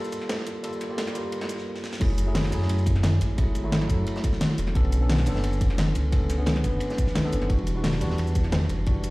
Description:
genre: liquid drum and bass.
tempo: 175 BPM.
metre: 4/4.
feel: straight.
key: F# phrygian.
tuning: A4 = 440 Hz.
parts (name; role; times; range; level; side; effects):
tine electric piano; accompaniment; 0.0-9.1 s; D3 to B4; -30 LUFS; equal; dub echo.
pop drum kit; drums; 0.0-9.1 s; crash cymbal, hi-hat, shaker, snare drum; -30 LUFS; equal; high-pass filter on hats, high-pass filter on perc, high-pass filter on snare, high-pass filter on cymbals, high-pass filter on room.
crunchy breakbeat drum kit; drums; 0.1-9.1 s; hi-hat, ride cymbal, snare drum; -36 LUFS; equal; high-pass filter on cymbals, high-pass filter on hats, high-pass filter on snare, high-pass filter on room.
dark detuned saw bass; bass; 2.0-9.1 s; E1 to F#2; -25 LUFS; equal; tube saturation.
electronic kick drum; drums; 2.0-8.9 s; none; -25 LUFS; equal; none.
room: light reverb, small room reverb.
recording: played on a big sound system in a bare room, large studio reverb.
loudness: -22 LUFS.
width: side -21 dB against mid.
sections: 0.0-2.0 A section; 2.0-9.1 B section.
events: build-up 0.0-2.0; drum fill 1.8; drop 2.0-9.1.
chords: 0.0 Gm9; 2.0 F#m9; 4.8 Bm9; 7.5 Em9.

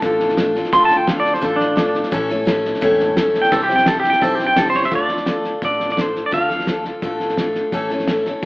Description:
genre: honky-tonk and classic country.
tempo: 172 BPM.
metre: 4/4.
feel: straight.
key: D minor.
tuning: A4 = 440 Hz.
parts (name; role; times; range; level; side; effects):
picked steel-string acoustic guitar; accompaniment; 0.0-8.5 s; A2 to C5; -20 LUFS; left 1 dB; none.
upright bass; bass; 0.0-8.5 s; E1 to D2; -32 LUFS; equal; none.
cloth-damped thuddy drum kit; drums; 0.0-8.5 s; hi-hat, kick drum, snare drum; -23 LUFS; equal; none.
clean electric guitar; second line; 0.7-6.8 s; D4 to C6; -17 LUFS; equal; tape echo.
room: wet plate reverb, RT60 1.3 s.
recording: heard from further back in the room, AM radio sound.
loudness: -15 LUFS.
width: side -22 dB against mid.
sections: 0.0-4.9 A section; 4.9-8.5 B section.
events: clean electric guitar solo 0.0-4.9, 4.9-8.5.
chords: 0.0 Dm; 2.1 A; 3.5 C; 4.9 Dm; 7.7 A.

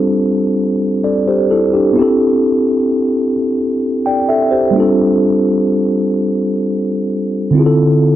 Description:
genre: R&B.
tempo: 43 BPM (dotted quarters).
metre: 6/8.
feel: straight.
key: unclear.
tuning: A4 = 440 Hz.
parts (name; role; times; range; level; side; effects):
mellow tine electric piano; solo; 0.0-8.2 s; D3 to G5; -12 LUFS; equal; medium stereo tremolo, digital delay.
room: moderate studio reverb, RT60 0.5 s.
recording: dark, warm production.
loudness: -12 LUFS.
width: side -12 dB against mid.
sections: 0.0-7.5 A section.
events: none.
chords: 0.0 G7sus4; 2.0 Am7; 4.8 G7sus4; 7.5 Dm9.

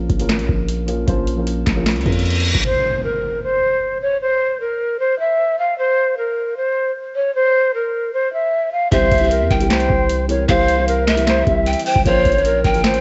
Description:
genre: hip hop, trap.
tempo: 153 BPM.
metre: 4/4.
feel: half-time.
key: unclear.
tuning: A4 = 440 Hz.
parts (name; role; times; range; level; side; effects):
dark concert grand piano; accompaniment; 0.0-2.7, 8.9-13.0 s; E3 to C5; -26 LUFS; equal; low-pass filter, cassette tape.
long sustained 808-style bass; bass; 0.0-2.6, 8.9-13.0 s; Ab1 to F2; -22 LUFS; equal; none.
booming analog drum machine; drums; 0.1-2.7, 8.9-13.0 s; handclaps, hi-hat, kick drum, snare drum; -23 LUFS; equal; overdrive.
reverse cymbal and impact; sound effects; 2.0-4.2 s; none; -27 LUFS; equal; none.
breathy hollow jazz flute; melody; 2.6-13.0 s; Bb4 to G5; -20 LUFS; equal; low-pass filter, cassette tape.
breathy mellow pan flute; second line; 8.9-13.0 s; C5 to G5; -22 LUFS; equal; cassette tape, tape echo.
room: light reverb, studio ambience.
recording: home recording on cassette, nothing above 7.9 kHz.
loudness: -18 LUFS.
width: mono.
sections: 0.0-2.6 A section; 2.6-13.0 B section.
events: reverse cymbal 2.0-2.6; impact 2.6-4.2.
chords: 0.0 Bbm; 2.6 N.C.; 8.9 C; 12.1 Bbm.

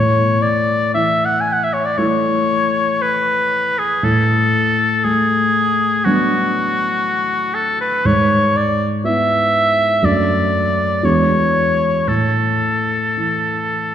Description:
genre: classical, romantic duo for oboe and grand piano.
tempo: 59 BPM.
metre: 4/4.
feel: rubato.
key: A major.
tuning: A4 = 440 Hz.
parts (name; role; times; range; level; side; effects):
clear oboe; melody; 0.0-13.9 s; F#4 to G#5; -16 LUFS; left 1 dB; none.
dark grand piano; accompaniment; 0.0-13.9 s; E2 to F#4; -18 LUFS; equal; none.
room: wet concert hall reverb, RT60 2.4 s.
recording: recorded in a church or concert hall.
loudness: -14 LUFS.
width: side -9 dB against mid.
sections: 0.0-13.9 A section.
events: none.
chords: 0.0 A; 4.0 Bm7/A; 8.0 E/G#; 10.0 D/F#; 11.0 E13; 12.1 A5.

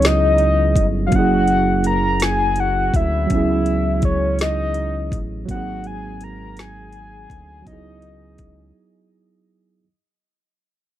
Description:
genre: slow six-eight R&B.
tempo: 55 BPM (dotted quarters).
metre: 6/8.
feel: straight.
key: unclear.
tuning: A4 = 442 Hz.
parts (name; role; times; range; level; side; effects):
soft octave-layered synth lead; melody; 0.0-9.1 s; Db5 to Bb5; -21 LUFS; left 2 dB; chorus.
tine electric piano; accompaniment; 0.0-9.9 s; Gb3 to Ab4; -22 LUFS; right 4 dB; none.
round analog bass; bass; 0.0-8.7 s; Gb1 to D2; -23 LUFS; left 1 dB; none.
smooth R&B drum kit; drums; 0.0-8.6 s; hi-hat, kick drum, snare drum; -21 LUFS; left 1 dB; none.
room: little or no reverb.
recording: dry, close 1970s-style studio recording.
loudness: -16 LUFS.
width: side -12 dB against mid.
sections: 0.0-9.9 A section.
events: fade-out 0.0-9.9; break 8.8-9.9.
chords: 0.0 Dbm11; 1.1 Gb7; 3.3 Dbm11; 5.5 Ab7; 7.7 Dbm11.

